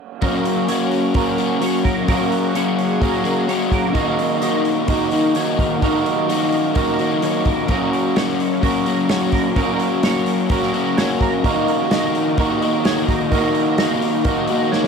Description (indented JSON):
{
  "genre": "rock, shoegaze and dream pop",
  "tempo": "128 BPM",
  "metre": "4/4",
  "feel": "straight",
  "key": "F# major",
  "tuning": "A4 = 440 Hz",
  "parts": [
    { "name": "icy glass pad", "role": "sustained chords", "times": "0.9-14.9 s", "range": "F#3 to A#4", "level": "-27 LUFS", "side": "equal", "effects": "chorus, built-in reverb" },
    { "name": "twelve-string electric guitar", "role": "arpeggios", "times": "0.2-14.9 s", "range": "A#4 to D#5", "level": "-28 LUFS", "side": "right 10 dB", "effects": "ensemble chorus, tape echo" },
    { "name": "electric guitar through a small old amp", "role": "riff", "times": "0.2-14.9 s", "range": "F#2 to F#4", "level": "-22 LUFS", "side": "right 11 dB", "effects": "reverse reverb" },
    { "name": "overdriven semi-hollow guitar", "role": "riff", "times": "0.2-14.9 s", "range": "D#3 to F#4", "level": "-20 LUFS", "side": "left 10 dB", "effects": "analog chorus" },
    { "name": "loose indie drum kit", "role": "drums", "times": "0.2-14.9 s", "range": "hi-hat, kick drum, snare drum", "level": "-23 LUFS", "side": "equal", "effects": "none" }
  ],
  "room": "light reverb, small room ambience",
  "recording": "none",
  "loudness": "-16 LUFS",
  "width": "side -6 dB against mid",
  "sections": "0.2-14.9 A section",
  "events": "drum fill 14.7",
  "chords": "0.2 F#; 4.0 D#m; 7.7 F#; 11.4 D#m"
}